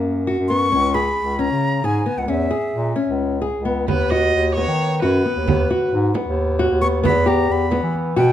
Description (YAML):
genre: contemporary instrumental, chamber music in an uneven meter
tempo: 267 BPM (eighths)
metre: 7/8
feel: straight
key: B major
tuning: A4 = 440 Hz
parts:
  - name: nylon-string guitar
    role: arpeggios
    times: 0.0-8.3 s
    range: A#3 to G#4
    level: -21 LUFS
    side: left 2 dB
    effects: none
  - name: warm bass clarinet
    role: bass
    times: 0.0-8.3 s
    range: C#2 to E3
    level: -21 LUFS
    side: equal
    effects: none
  - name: breathy bright concert flute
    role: melody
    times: 0.5-3.2, 6.8-8.3 s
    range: E5 to C#6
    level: -22 LUFS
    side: left 1 dB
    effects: none
  - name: clear viola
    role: second line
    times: 3.9-5.9 s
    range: B4 to D#5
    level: -23 LUFS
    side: right 3 dB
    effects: none
  - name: frame drum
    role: percussion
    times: 3.9-8.3 s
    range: none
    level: -25 LUFS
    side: right 5 dB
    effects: none
room: light reverb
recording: dark, warm production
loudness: -17 LUFS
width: side -11 dB against mid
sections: 0.0-8.3 A section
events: none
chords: 0.0 F#; 0.7 C#m; 3.9 B/D#; 7.0 Emadd9